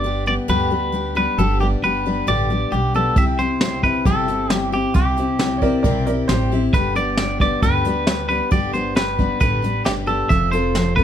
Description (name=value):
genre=honky-tonk and classic country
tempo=135 BPM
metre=4/4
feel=straight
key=unclear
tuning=A4 = 440 Hz
part: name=twangy electric guitar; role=melody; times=0.0-11.0 s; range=G4 to E5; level=-21 LUFS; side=right 1 dB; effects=none
part: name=picked steel-string acoustic guitar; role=accompaniment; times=0.0-11.0 s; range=G2 to A4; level=-22 LUFS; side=left 4 dB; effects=none
part: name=upright bass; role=bass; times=0.0-11.0 s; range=F1 to D2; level=-24 LUFS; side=right 1 dB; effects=none
part: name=vintage brush drum kit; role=drums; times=3.2-11.0 s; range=hi-hat, kick drum, snare drum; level=-20 LUFS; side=right 1 dB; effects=none
part: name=bright upright piano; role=second line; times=5.6-6.6 s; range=Bb4 to D5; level=-23 LUFS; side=right 5 dB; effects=none
room=light reverb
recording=close, detailed microphones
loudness=-16 LUFS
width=side -9 dB against mid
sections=0.0-11.0 A section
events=none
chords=0.0 G; 3.2 C; 6.7 G; 10.3 F